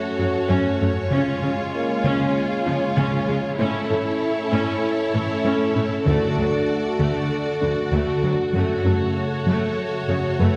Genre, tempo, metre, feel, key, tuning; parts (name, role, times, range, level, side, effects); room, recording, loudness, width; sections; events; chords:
cinematic, hybrid orchestral and electronic film score; 97 BPM; 4/4; straight; A4 = 439 Hz
rich symphonic violin section; second line; 0.0-10.6 s; G#4 to D5; -31 LUFS; equal
clear symphonic viola section; accompaniment; 0.0-10.6 s; C#3 to F#4; -28 LUFS; equal
hollow soft pad; sustained chords; 0.0-10.6 s; C#3 to C#5; -27 LUFS; equal; chorus
felt-muted upright piano; texture; 0.0-10.6 s; A3 to B5; -36 LUFS; equal
soft round pluck; arpeggios; 0.2-10.6 s; C#3 to A4; -30 LUFS; equal; chorus, tape echo
rich symphonic cello section; bass; 0.2-10.5 s; D2 to C#3; -28 LUFS; equal
wet scoring stage reverb, RT60 1.7 s; heard from further back in the room; -22 LUFS; mono
0.0-10.6 A section
0.0 F#m; 1.1 C#; 3.6 A; 6.1 D; 8.5 F#m